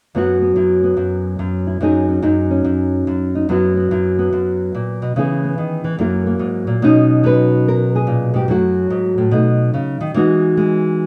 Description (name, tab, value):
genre	solo jazz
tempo	144 BPM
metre	4/4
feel	swing 65% on 8ths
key	B major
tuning	A4 = 439 Hz
part	nylon-string guitar	solo	0.1-11.1 s	F#2 to B4	-16 LUFS	equal	none
room	wet studio reverb, RT60 0.6 s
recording	band playing live in one room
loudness	-16 LUFS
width	mono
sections	0.1-6.8 A section; 6.8-11.1 B section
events	none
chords	0.1 F#7sus4; 1.8 G#7sus4/F#; 3.5 F#7sus4; 5.2 C#m7; 6.0 F#7; 6.8 Bmaj9; 8.5 F#m7; 9.3 B7; 10.2 Emaj9